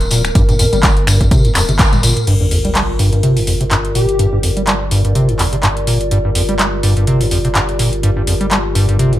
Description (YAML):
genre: acid house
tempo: 125 BPM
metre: 4/4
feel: swing 56% on 16ths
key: G minor pentatonic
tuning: A4 = 440 Hz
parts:
  - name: dark analog pad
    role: sustained chords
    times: 0.0-9.2 s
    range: G4 to Bb4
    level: -30 LUFS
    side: left 2 dB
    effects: none
  - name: saturated sub bass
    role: bass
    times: 0.0-9.2 s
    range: D1 to G1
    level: -21 LUFS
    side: equal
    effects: sidechain pumping
  - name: booming analog drum machine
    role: drums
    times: 0.0-9.2 s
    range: crash cymbal, finger snaps, handclaps, hi-hat, toms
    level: -18 LUFS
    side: equal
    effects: none
  - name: tambourine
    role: percussion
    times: 0.0-2.2 s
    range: none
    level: -22 LUFS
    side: left 3 dB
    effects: none
  - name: warbly tape-like pad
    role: texture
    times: 0.0-9.2 s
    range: F4 to D5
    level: -22 LUFS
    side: left 1 dB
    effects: chorus, built-in reverb, sidechain pumping
  - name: acid bass, square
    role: riff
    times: 0.1-9.2 s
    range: F2 to G3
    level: -15 LUFS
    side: equal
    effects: overdrive, lush chorus, cassette tape
  - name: electronic kick drum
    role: drums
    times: 0.4-1.9 s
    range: none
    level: -12 LUFS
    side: equal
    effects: overdrive
  - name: sub drop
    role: sound effects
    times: 2.4-4.2 s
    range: none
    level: -22 LUFS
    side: equal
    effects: none
  - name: airy dreamy lead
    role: melody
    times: 4.0-4.3 s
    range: G4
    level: -20 LUFS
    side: left 3 dB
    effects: chorus, ping-pong delay
room: light reverb, digital ambience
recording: none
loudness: -11 LUFS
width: side -14 dB against mid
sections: 0.0-2.3 A section; 2.3-9.2 B section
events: filter sweep on acid bass 0.0-2.3; drum fill 1.8-2.3; band accent 1.8; impact 2.3-4.2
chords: 0.0 Gm; 2.3 Gm7